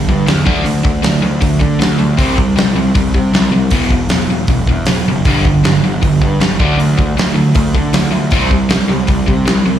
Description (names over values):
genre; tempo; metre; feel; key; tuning
punk rock; 156 BPM; 4/4; straight; unclear; A4 = 440 Hz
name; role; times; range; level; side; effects
overdriven electric guitar; riff; 0.0-9.8 s; E2 to D4; -15 LUFS; right 1 dB; none
fuzz picked electric bass; bass; 0.0-9.8 s; E1 to D3; -17 LUFS; equal; overdrive
big rock drum kit; drums; 0.1-9.6 s; hi-hat, kick drum, snare drum; -15 LUFS; equal; none
room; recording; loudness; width
studio reverb; live gig heard through the venue's PA, club reverb; -11 LUFS; side -10 dB against mid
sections
0.0-9.8 A section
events
none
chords
0.5 D5; 2.2 C5; 3.7 E5; 5.2 G5; 6.6 D5; 8.3 C5